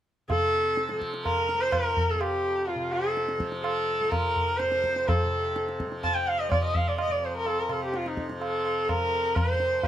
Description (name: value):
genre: indian classical, Hindustani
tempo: 126 BPM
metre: 5/4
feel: straight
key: F raga khamaj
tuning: A4 = 439 Hz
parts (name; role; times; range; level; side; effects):
- rich sarangi; melody; 0.3-9.9 s; Eb4 to A5; -26 LUFS; equal; none
- tanpura; drone; 0.3-9.9 s; F2 to F3; -36 LUFS; left 1 dB; none
- tabla; percussion; 0.3-9.9 s; none; -30 LUFS; equal; none
room: light reverb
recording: close, detailed microphones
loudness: -24 LUFS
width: side -11 dB against mid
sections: 0.3-9.9 A section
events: none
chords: none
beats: | 0.29 0.77 1.25 1.73 2.21 | 2.69 3.17 3.65 4.13 4.61 | 5.08 5.56 6.04 6.51 6.99 | 7.47 7.94 8.42 8.89 9.37 | 9.84